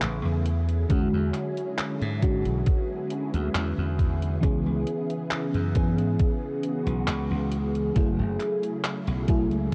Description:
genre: vaporwave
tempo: 68 BPM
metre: 4/4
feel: straight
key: unclear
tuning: A4 = 444 Hz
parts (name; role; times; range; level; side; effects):
- FM electric piano with soft pad layer; accompaniment; 0.0-9.7 s; C#3 to G#4; -31 LUFS; equal; tremolo, lush chorus, cassette tape, analog delay
- soft string machine; sustained chords; 0.0-9.7 s; C#3 to G#4; -38 LUFS; equal; phaser, ensemble chorus
- slap bass; bass; 0.0-9.7 s; F#1 to G#2; -30 LUFS; equal; none
- detuned 8-bit digital drum machine; drums; 0.0-9.7 s; handclaps, hi-hat; -36 LUFS; equal; none
- electronic kick drum; drums; 0.9-9.5 s; none; -27 LUFS; equal; none
room: light reverb, digital ambience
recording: cassette tape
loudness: -26 LUFS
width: mono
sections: 0.0-9.7 A section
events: none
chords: 0.5 E13; 4.4 C#m7; 8.0 F#m9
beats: 0.02 | 0.90 1.78 2.67 3.55 | 4.43 5.31 6.20 7.08 | 7.96 8.84 9.72

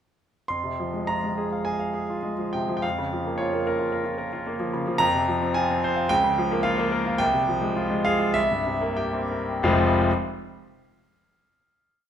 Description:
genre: classical, romantic character piece for solo piano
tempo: 85-113 BPM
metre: 4/4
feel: rubato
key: F minor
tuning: A4 = 440 Hz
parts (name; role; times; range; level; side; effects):
- bright concert grand piano; solo; 0.5-10.1 s; F1 to C6; -22 LUFS; equal; none
room: moderate recital hall reverb, RT60 1.2 s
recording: none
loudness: -22 LUFS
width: side -9 dB against mid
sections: 0.5-9.6 A section; 9.6-12.1 final chord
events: slowing down 3.9-9.6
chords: 0.5 Fm; 2.8 Bbm/F; 5.0 Fm; 6.1 Bbm/Db; 7.2 Fm/C; 8.4 C7; 9.6 Fm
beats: | 0.51 1.09 1.66 2.24 | 2.83 3.40 3.93 4.48 | 5.02 5.58 6.12 6.66 | 7.21 7.77 8.37 8.98 | 9.64

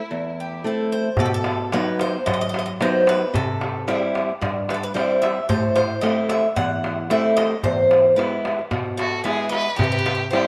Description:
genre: greek folk, Greek bouzouki band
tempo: 112 BPM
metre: 4/4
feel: straight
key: A dorian sharp4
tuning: A4 = 440 Hz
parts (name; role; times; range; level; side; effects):
- Greek bouzouki; melody; 0.0-10.5 s; G4 to F#5; -25 LUFS; equal; none
- rich violin; second line; 0.0-0.6, 9.0-10.5 s; E4 to B4; -28 LUFS; equal; none
- fingerpicked old ladder-braced acoustic guitar; accompaniment; 0.1-10.5 s; E2 to E4; -25 LUFS; equal; none
- darbuka; percussion; 1.2-10.5 s; none; -28 LUFS; equal; none
room: moderate plate reverb, RT60 2.7 s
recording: lossy compression artefacts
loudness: -21 LUFS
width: mono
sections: 0.0-1.2 A section; 1.2-10.5 B section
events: none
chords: 0.0 Am; 1.2 B; 3.3 C; 5.5 Am; 7.6 E; 9.8 C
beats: 0.10 0.64 | 1.18 1.72 2.26 2.80 | 3.34 3.88 4.42 4.95 | 5.49 6.03 6.57 7.10 | 7.64 8.18 8.71 9.25 | 9.78 10.32

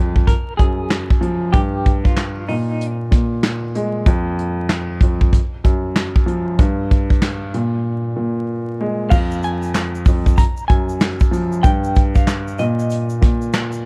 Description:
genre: hip hop, boom-bap hip-hop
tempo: 95 BPM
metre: 4/4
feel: swing 63% on 16ths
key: unclear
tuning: A4 = 440 Hz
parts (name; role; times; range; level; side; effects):
- warm upright piano; accompaniment; 0.0-13.9 s; F2 to Ab3; -23 LUFS; equal; high-pass filter, low-pass filter
- soft brush drum kit; drums; 0.2-13.7 s; crash cymbal, handclaps, hi-hat, kick drum, snare drum; -18 LUFS; equal; none
- semi-hollow electric guitar; melody; 0.3-3.0, 9.1-13.1 s; Eb4 to Bb5; -28 LUFS; equal; tremolo, high-pass filter, low-pass filter
- tube shaker; percussion; 9.1-13.8 s; none; -47 LUFS; equal; none
room: studio ambience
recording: dark, warm production, vinyl crackle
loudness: -18 LUFS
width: mono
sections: 0.0-9.1 A section; 9.1-13.9 B section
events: break 7.9-9.1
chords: 0.3 Gbmaj9; 1.5 N.C.; 2.5 Bb7sus4; 4.1 N.C.; 7.5 Absus2/Bb; 9.1 N.C.; 10.4 Gbmaj9; 11.6 N.C.; 12.6 Bbsus4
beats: 0.27 0.91 | 1.54 2.17 2.80 3.43 | 4.06 4.69 5.33 5.96 | 6.59 7.22 7.85 8.48 | 9.12 9.75 10.38 11.01 | 11.64 12.27 12.90 13.54

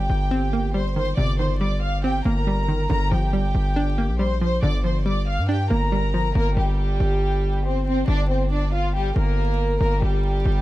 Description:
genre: hip hop, trap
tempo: 139 BPM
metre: 4/4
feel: half-time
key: unclear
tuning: A4 = 440 Hz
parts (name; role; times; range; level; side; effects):
- warm studio violin section; melody; 0.0-10.6 s; G3 to F6; -26 LUFS; equal; tape echo
- hollow square pluck; accompaniment; 0.0-6.4 s; C3 to D4; -26 LUFS; right 1 dB; chorus
- distorted 808-style bass; bass; 0.0-10.6 s; G1 to G2; -22 LUFS; equal; distortion
room: small room ambience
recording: dark, warm production, vinyl crackle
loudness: -20 LUFS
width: side -16 dB against mid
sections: 0.0-6.4 A section; 6.4-10.6 B section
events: none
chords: 0.0 Eb/G; 2.9 Bb6/G; 9.8 Eb/G (rootless)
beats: 0.31 0.74 | 1.17 1.60 2.04 2.47 | 2.90 3.33 3.76 4.20 | 4.63 5.06 5.49 5.92 | 6.35 6.79 7.22 7.65 | 8.08 8.51 8.94 9.38 | 9.81 10.24

